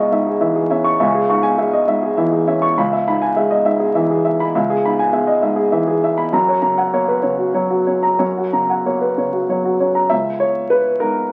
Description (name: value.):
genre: neoclassical minimalist piano.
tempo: 67 BPM (dotted quarters).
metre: 6/8.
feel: rubato.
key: C# dorian.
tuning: A4 = 440 Hz.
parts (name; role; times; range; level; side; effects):
warm upright piano; solo; 0.0-11.3 s; C#2 to C#6; -17 LUFS; equal; none.
room: moderate large studio reverb, RT60 0.9 s.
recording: very old 78 rpm record, vinyl crackle.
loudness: -17 LUFS.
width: mono.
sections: 0.0-10.1 A section; 10.1-11.3 B section.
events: none.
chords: 0.0 C#m; 2.8 E/C#; 6.3 F#; 10.1 C#5.